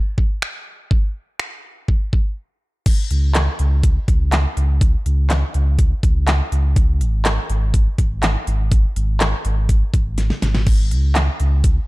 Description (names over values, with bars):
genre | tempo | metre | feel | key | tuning
dance-pop | 123 BPM | 4/4 | straight | unclear | A4 = 441 Hz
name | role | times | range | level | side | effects
pop drum kit | drums | 0.2-11.8 s | crash cymbal, finger snaps, handclaps, hi-hat, kick drum, snare drum | -18 LUFS | equal | none
sub bass with octave | bass | 3.1-11.8 s | G#1 to C#2 | -18 LUFS | equal | sidechain pumping
room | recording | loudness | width
digital ambience | dark, warm production | -16 LUFS | side -21 dB against mid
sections
0.0-2.9 A section; 2.9-11.9 B section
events
break 2.4-2.9; drum fill 10.2-10.7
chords
none